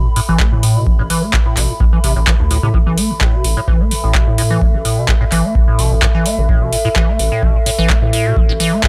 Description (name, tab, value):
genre	acid house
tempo	128 BPM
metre	4/4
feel	straight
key	unclear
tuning	A4 = 445 Hz
part	liquid acid bass	riff	0.0-8.9 s	G2 to A3	-21 LUFS	equal	phaser, tube saturation, subtle chorus, sidechain pumping, analog delay
part	round analog bass	bass	0.0-8.6 s	A1 to A2	-20 LUFS	equal	sidechain pumping
part	warbly tape-like pad	texture	0.0-8.9 s	A4 to B5	-25 LUFS	equal	chorus, built-in reverb, sidechain pumping
part	electro analog drum machine	drums	0.2-8.9 s	handclaps, hi-hat	-22 LUFS	equal	none
part	electronic kick drum	drums	0.4-8.9 s	none	-17 LUFS	equal	none
room	light reverb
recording	dry, gritty hardware recording, transformer saturation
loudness	-14 LUFS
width	mono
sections	0.0-8.9 A section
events	filter sweep on acid bass 0.0-8.9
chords	0.0 A5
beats	0.40 | 0.87 1.33 1.80 2.27 | 2.74 3.21 3.68 4.15 | 4.62 5.08 5.55 6.02 | 6.49 6.96 7.43 7.90 | 8.37 8.84